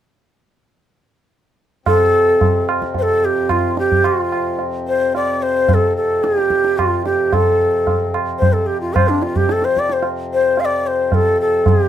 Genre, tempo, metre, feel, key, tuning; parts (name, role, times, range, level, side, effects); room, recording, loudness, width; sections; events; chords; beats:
indian classical, Hindustani; 110 BPM; 5/4; straight; F raga bhupali; A4 = 440 Hz
breathy bansuri; melody; 1.9-11.9 s; D4 to F5; -15 LUFS; equal
pedal harmonium; drone; 1.9-11.9 s; F2 to C3; -25 LUFS; left 3 dB
tabla; percussion; 1.9-11.9 s; -18 LUFS; right 2 dB
moderate studio reverb, RT60 0.6 s; minimal, uncompressed stereo recording; -14 LUFS; side -10 dB against mid
1.9-11.9 A section
| 1.87 2.42 2.96 3.51 4.05 | 4.60 5.14 5.69 6.23 6.78 | 7.32 7.86 8.41 8.95 9.49 | 10.04 10.58 11.12 11.66